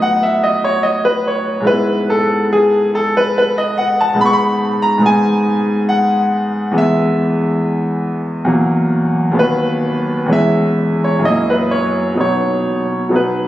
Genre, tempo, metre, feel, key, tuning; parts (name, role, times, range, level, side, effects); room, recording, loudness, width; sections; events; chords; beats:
classical, baroque-style suite movement for grand piano; 62-73 BPM; 3/4; rubato; E major, B major from 4.2 s; A4 = 440 Hz
bright grand piano; solo; 0.0-13.5 s; D#2 to C#6; -13 LUFS; equal
wet church reverb, RT60 3.1 s; recorded on a phone in the room, studio ambience, compression; -13 LUFS; side -14 dB against mid
0.0-13.5 A section
0.0 B7/A; 1.7 E/G#; 4.2 G#m; 6.8 E; 8.5 F#7/E; 9.4 B/D#; 10.3 C#m/E; 11.2 F#7; 12.2 B
0.03 0.86 | 1.69 2.52 3.36 | 4.20 5.04 5.90 | 6.77 7.63 8.50 | 9.38 10.31 11.23 | 12.17 13.13